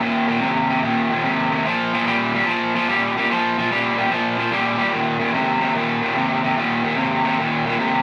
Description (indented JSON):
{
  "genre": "blues",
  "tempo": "146 BPM",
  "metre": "4/4",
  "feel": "swing 68% on 8ths",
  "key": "Eb major",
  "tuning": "A4 = 440 Hz",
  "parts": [
    { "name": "cranked stack guitar", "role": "solo", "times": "0.0-8.0 s", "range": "Eb2 to G3", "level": "-20 LUFS", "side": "equal", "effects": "overdrive" }
  ],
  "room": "wet small room reverb, RT60 0.6 s",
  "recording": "vinyl crackle",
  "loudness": "-20 LUFS",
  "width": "mono",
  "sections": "0.0-8.0 A section",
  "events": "none",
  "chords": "0.0 Eb5; 1.6 Bb5; 4.9 Eb5"
}